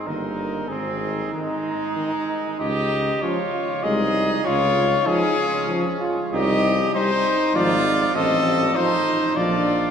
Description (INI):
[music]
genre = classical, brass quintet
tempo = 97 BPM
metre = 3/4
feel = rubato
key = unclear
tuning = A4 = 443 Hz
[part]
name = warm cornet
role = melody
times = 0.0-9.9 s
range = Eb4 to Eb5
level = -23 LUFS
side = left 4 dB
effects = none
[part]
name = clear trumpet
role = second line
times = 0.0-9.9 s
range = Ab3 to A4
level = -26 LUFS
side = right 4 dB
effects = none
[part]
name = warm trombone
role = accompaniment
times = 0.0-9.9 s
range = Bb3 to F4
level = -26 LUFS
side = right 2 dB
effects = none
[part]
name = warm French horn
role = accompaniment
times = 0.1-9.5 s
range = Eb3 to Ab3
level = -30 LUFS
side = left 1 dB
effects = none
[part]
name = warm tuba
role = bass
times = 0.1-9.9 s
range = G1 to Db2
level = -27 LUFS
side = right 1 dB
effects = none
[sound]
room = wet cathedral reverb, RT60 6.3 s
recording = heard from further back in the room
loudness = -19 LUFS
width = side -7 dB against mid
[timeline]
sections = 0.0-9.9 A section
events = none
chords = 0.1 Eb/G; 0.7 Ab; 2.6 Db; 3.8 Ab/C; 4.5 Db; 6.3 Cm; 7.6 Fm/Ab; 8.2 F7/A; 9.4 Bb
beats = 0.08 | 0.70 1.33 1.96 | 2.60 3.23 3.84 | 4.46 5.07 5.69 | 6.33 6.95 7.55 | 8.15 8.76 9.37